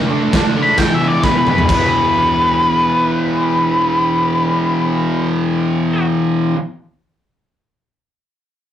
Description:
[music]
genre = garage rock duo or trio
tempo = 133 BPM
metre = 4/4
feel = straight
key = unclear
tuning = A4 = 440 Hz
[part]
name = fuzz guitar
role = riff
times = 0.0-6.6 s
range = E2 to D4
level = -16 LUFS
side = equal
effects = distortion
[part]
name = raw garage drum kit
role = drums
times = 0.3-1.8 s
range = crash cymbal, kick drum, snare drum, toms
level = -18 LUFS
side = left 1 dB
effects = none
[part]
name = octave-fuzz lead guitar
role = melody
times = 0.6-6.1 s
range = B4 to B5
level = -16 LUFS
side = left 1 dB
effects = distortion
[sound]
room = wet studio reverb, RT60 0.5 s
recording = rough rehearsal-room recording, warm saturation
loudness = -13 LUFS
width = side -10 dB against mid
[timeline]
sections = 0.0-1.7 A section; 1.7-5.3 B section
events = drum fill 1.2-1.7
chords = 0.0 D5; 0.8 E5

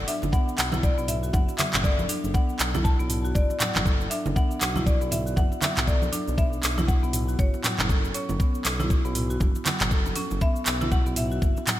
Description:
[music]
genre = afro house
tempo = 119 BPM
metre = 4/4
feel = swing 58% on 16ths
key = B minor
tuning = A4 = 445 Hz
[part]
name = marimba with hard mallets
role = melody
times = 0.0-11.8 s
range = C#5 to A5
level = -32 LUFS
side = left 2 dB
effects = digital delay
[part]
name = smooth synth bass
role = bass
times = 0.0-11.5 s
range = F#1 to B1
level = -29 LUFS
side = equal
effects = sidechain pumping
[part]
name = marimba with medium hard mallets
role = arpeggios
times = 0.1-11.8 s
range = F#3 to A4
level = -32 LUFS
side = equal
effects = sidechain pumping, digital delay
[part]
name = afro-pop drum kit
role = drums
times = 0.1-11.8 s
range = handclaps, hi-hat, shaker, toms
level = -28 LUFS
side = equal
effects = gated reverb
[part]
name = congas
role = percussion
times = 0.2-11.8 s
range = none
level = -34 LUFS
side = right 2 dB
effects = none
[part]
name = electronic kick drum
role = drums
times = 0.3-11.5 s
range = none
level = -23 LUFS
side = equal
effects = none
[sound]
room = light reverb, digital ambience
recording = bright 1980s-style digital production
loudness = -22 LUFS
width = side -14 dB against mid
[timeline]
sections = 0.0-11.8 A section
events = none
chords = 0.0 Bm; 6.4 A (rootless)

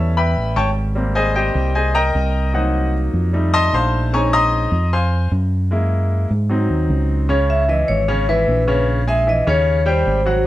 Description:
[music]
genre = jazz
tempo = 152 BPM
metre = 4/4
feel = straight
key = C# minor from 7.3 s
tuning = A4 = 441 Hz
[part]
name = clear baby grand piano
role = accompaniment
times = 0.0-10.4 s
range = C#3 to Eb6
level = -19 LUFS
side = left 1 dB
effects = none
[part]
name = fingered electric bass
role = bass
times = 0.0-10.5 s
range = Ab1 to Ab2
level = -18 LUFS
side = equal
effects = none
[part]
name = vibraphone with medium mallets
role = melody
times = 7.5-10.4 s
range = B4 to E5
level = -18 LUFS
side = left 1 dB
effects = plate reverb
[sound]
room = light reverb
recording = none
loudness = -15 LUFS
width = side -15 dB against mid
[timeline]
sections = 0.0-7.3 A section; 7.3-10.5 A section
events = grand piano solo 0.0-7.3; vibraphone solo 7.3-10.5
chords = 0.0 A9; 1.0 Abmaj9; 2.5 Cm7b5; 3.3 F7; 4.1 Bbm11; 5.7 Gb9; 6.5 Ab7; 7.3 C#m7; 8.9 A#m7b5; 9.7 D#7

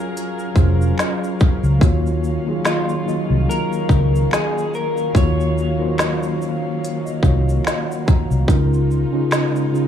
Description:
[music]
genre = lo-fi hip hop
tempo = 72 BPM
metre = 4/4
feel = swing 56% on 16ths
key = Eb dorian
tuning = A4 = 441 Hz
[part]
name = mellow tine electric piano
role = accompaniment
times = 0.0-9.9 s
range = Db3 to Bb5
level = -21 LUFS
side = equal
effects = medium stereo tremolo, low-pass filter
[part]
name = warm chamber string section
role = sustained chords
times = 0.0-9.9 s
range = Db3 to F5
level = -30 LUFS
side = left 1 dB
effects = low-pass filter
[part]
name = organic electronic drum kit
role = drums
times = 0.2-9.9 s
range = hi-hat, kick drum, shaker, snare drum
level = -18 LUFS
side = equal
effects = overdrive
[part]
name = vintage muted fingered electric bass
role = bass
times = 0.6-9.0 s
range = F1 to Eb2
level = -18 LUFS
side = equal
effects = none
[part]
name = finger snaps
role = percussion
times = 1.0-9.5 s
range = none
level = barely audible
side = none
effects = none
[part]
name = electric guitar through a small old amp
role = melody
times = 2.7-8.0 s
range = F4 to Db5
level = -25 LUFS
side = left 1 dB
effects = lush chorus, low-pass filter
[sound]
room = digital ambience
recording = studio ambience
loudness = -16 LUFS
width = side -9 dB against mid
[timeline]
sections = 0.0-9.9 A section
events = none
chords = 0.0 Gbmaj9; 1.8 Ebm9; 8.5 Db69

